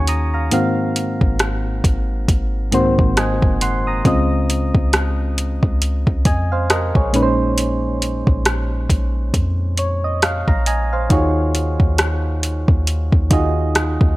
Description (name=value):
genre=contemporary R&B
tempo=68 BPM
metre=4/4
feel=swing 58% on 16ths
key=unclear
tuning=A4 = 439 Hz
part: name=soft electric-piano-like synth keys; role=accompaniment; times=0.0-14.2 s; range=Ab2 to Eb6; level=-20 LUFS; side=equal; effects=chorus
part: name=warm 808-style bass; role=bass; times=0.0-14.2 s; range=Gb1 to F2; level=-20 LUFS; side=equal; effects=none
part: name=smooth R&B drum kit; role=drums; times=0.1-14.2 s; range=hi-hat, kick drum, rim click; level=-17 LUFS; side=equal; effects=none
room=digital ambience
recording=dry, gritty hardware recording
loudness=-15 LUFS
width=side -18 dB against mid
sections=0.0-14.2 A section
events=synth keys fill 9.3-11.1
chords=0.0 Ebm11; 0.5 Ab13; 4.0 Bbm11; 11.1 Ebm11